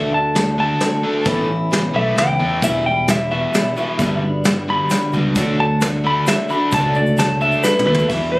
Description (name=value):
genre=folk rock and heartland rock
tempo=132 BPM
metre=3/4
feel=straight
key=unclear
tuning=A4 = 440 Hz
part: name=clean electric guitar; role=melody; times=0.0-8.4 s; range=B4 to B5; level=-19 LUFS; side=equal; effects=none
part: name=picked acoustic archtop guitar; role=accompaniment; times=0.0-8.4 s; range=E2 to G4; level=-24 LUFS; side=left 1 dB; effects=none
part: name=overdriven electric guitar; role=riff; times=0.0-8.4 s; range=E2 to D4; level=-22 LUFS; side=equal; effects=none
part: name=fingered electric bass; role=bass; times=0.0-8.4 s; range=E1 to E2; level=-22 LUFS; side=equal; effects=none
part: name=soft brush drum kit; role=drums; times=0.4-8.2 s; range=hi-hat, kick drum, ride cymbal, snare drum, toms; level=-21 LUFS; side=equal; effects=none
part: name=egg shaker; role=percussion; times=2.6-8.0 s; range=none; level=-35 LUFS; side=equal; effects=none
room=moderate studio reverb, RT60 0.8 s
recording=recorded on a phone in the room, studio ambience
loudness=-15 LUFS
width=side -21 dB against mid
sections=0.0-8.1 A section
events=clean electric guitar solo 0.0-8.1; drum fill 7.6-8.1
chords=0.0 D; 1.3 Aadd9; 2.6 Em; 4.0 Gmaj7; 5.4 D